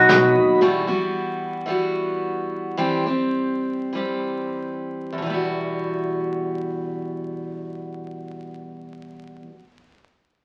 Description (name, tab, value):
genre	folk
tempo	93-114 BPM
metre	4/4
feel	straight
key	E harmonic minor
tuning	A4 = 441 Hz
part	picked steel-string acoustic guitar	accompaniment	0.0-9.6 s	E2 to G4	-25 LUFS	equal	none
part	mellow tonewheel organ	sustained chords	0.0-0.6 s	F#4 to B5	-26 LUFS	equal	slow rotary speaker
part	upright bass	bass	0.0-0.6 s	B1 to D#2	-30 LUFS	equal	none
room	wet club reverb, RT60 0.7 s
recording	very old 78 rpm record, vinyl crackle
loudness	-24 LUFS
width	mono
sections	0.6-5.2 A section; 5.2-10.4 B section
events	slowing down 0.6-5.2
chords	0.0 B; 0.6 Emadd9; 2.8 C/E; 5.2 Emadd9